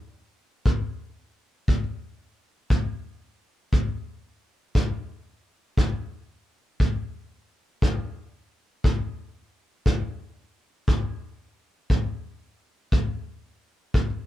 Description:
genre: blues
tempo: 59 BPM (dotted quarters)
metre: 12/8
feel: straight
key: none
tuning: none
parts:
  - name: kick drum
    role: drums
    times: 0.7-14.1 s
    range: none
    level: -23 LUFS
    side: equal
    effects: none
room: light reverb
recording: band playing live in one room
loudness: -24 LUFS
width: side -14 dB against mid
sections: 0.0-14.3 A section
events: none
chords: none

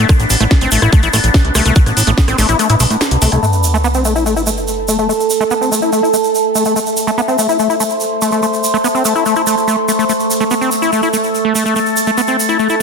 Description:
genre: psychedelic trance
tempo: 144 BPM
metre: 4/4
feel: straight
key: A minor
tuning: A4 = 439 Hz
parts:
  - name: overtone-sweeping drone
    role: sustained chords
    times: 0.0-12.8 s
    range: A3 to C5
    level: -16 LUFS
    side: right 1 dB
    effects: chorus, built-in reverb, sidechain pumping
  - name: overdriven acid bass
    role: riff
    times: 0.0-12.8 s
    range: A3 to E4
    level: -17 LUFS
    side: moving between left 6 dB and right 4 dB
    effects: auto-pan, cassette tape, sidechain pumping, ping-pong delay
  - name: fat analog bass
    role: bass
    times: 0.0-3.4 s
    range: A1 to A2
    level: -14 LUFS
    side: equal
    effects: none
  - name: electronic kick drum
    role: drums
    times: 0.1-2.3 s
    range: none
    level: -10 LUFS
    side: equal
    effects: none
  - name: techno drum kit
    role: drums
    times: 0.1-3.4 s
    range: hi-hat, rim click, snare drum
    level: -18 LUFS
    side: equal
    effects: none
  - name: tube shaker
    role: percussion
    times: 0.1-12.8 s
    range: none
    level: -21 LUFS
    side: right 5 dB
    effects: none
  - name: sub drop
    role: sound effects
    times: 3.4-5.1 s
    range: none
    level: -17 LUFS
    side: equal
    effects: none
room: light reverb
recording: dense, heavily limited modern master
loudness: -11 LUFS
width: side -5 dB against mid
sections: 0.0-3.4 A section; 3.4-12.8 B section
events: kick drops out 2.6-3.4; impact 3.4-5.1; filter sweep on acid bass 3.4-12.8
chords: 0.0 A5

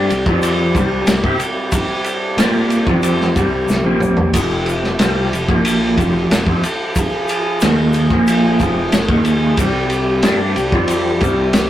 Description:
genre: psychedelic rock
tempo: 92 BPM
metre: 4/4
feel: straight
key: F minor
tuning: A4 = 436 Hz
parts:
  - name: hand-pumped harmonium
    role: sustained chords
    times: 0.0-11.7 s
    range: F3 to Ab4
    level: -22 LUFS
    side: equal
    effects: none
  - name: electric guitar through a small old amp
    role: riff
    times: 0.0-11.7 s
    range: F2 to Bb4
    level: -17 LUFS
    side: equal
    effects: rotary speaker
  - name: fuzz fingered electric bass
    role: bass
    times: 0.0-11.7 s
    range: F1 to C3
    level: -24 LUFS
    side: equal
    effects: overdrive
  - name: crunchy breakbeat drum kit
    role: drums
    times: 0.1-11.7 s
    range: kick drum, ride cymbal, snare drum, splash cymbal, toms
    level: -17 LUFS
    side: equal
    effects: none
  - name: tube shaker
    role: percussion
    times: 0.1-11.7 s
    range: none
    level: -33 LUFS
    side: left 6 dB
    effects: none
room: light reverb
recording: rough rehearsal-room recording, tube saturation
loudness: -13 LUFS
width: side -12 dB against mid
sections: 0.0-11.7 A section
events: drum fill 3.7-4.3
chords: 0.0 C5; 4.3 Fmadd9; 9.6 C5

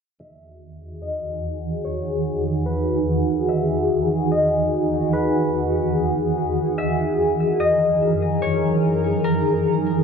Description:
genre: hip hop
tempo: 146 BPM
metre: 4/4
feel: half-time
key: E lydian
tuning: A4 = 437 Hz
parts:
  - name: concert harp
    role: melody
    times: 0.2-10.0 s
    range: A#4 to E5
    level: -25 LUFS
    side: left 2 dB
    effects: low-pass filter, ping-pong delay
  - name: shimmering ambient pad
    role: sustained chords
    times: 0.9-10.0 s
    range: E2 to A#4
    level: -20 LUFS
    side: equal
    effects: chorus, built-in reverb, phaser, low-pass filter
room: moderate lush hall reverb, RT60 2.6 s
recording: none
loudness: -19 LUFS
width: side -6 dB against mid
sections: 0.2-10.0 A section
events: filter sweep 0.2-10.0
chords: 0.2 Emaj9; 6.8 F#13

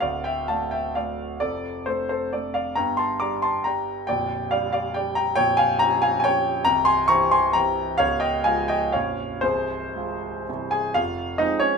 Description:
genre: classical, romantic triple-time dance for piano with dotted rhythms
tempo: 111-149 BPM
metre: 3/4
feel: rubato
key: D minor, F minor from 5.4 s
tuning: A4 = 440 Hz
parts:
  - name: warm concert grand piano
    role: solo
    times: 0.0-11.8 s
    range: Bb0 to D6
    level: -21 LUFS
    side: equal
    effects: none
room: light reverb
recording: minimal, uncompressed stereo recording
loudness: -21 LUFS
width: side -5 dB against mid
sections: 0.0-11.0 A section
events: none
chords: 0.0 Dm; 1.4 Dm/F; 2.8 Gm; 4.1 Gm/Bb; 5.4 Gm7b5/Bb; 6.7 C7; 8.0 Db; 8.9 Bbm; 9.4 Fm/C; 10.5 C; 11.0 Fm

